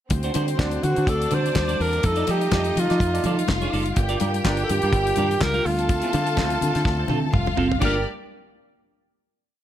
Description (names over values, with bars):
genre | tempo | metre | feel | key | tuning
disco | 125 BPM | 4/4 | swing 56% on 16ths | G minor | A4 = 442 Hz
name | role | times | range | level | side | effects
clear studio string section | second line | 0.1-8.0 s | Bb3 to A5 | -29 LUFS | left 2 dB | none
semi-hollow electric guitar | accompaniment | 0.1-8.0 s | C4 to F5 | -30 LUFS | right 4 dB | phaser
mellow French horn section | sustained chords | 0.1-8.0 s | D3 to Bb4 | -31 LUFS | right 2 dB | stereo widening
fingered electric bass | bass | 0.1-8.0 s | F1 to F3 | -25 LUFS | equal | none
damped 70s drum kit | drums | 0.1-7.9 s | crash cymbal, handclaps, hi-hat, kick drum, snare drum, toms | -26 LUFS | equal | none
congas | percussion | 0.1-8.0 s | none | -33 LUFS | left 6 dB | none
breathy alto saxophone | melody | 0.6-8.1 s | D4 to C5 | -25 LUFS | right 1 dB | none
room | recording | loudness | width
light reverb, small room ambience | none | -20 LUFS | side -11 dB against mid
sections
0.1-7.8 pre-chorus; 7.8-9.6 final chord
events
drum fill 6.9-7.8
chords
0.1 D7; 2.0 F13; 4.0 Gm7; 5.7 Dm7; 7.8 Gm7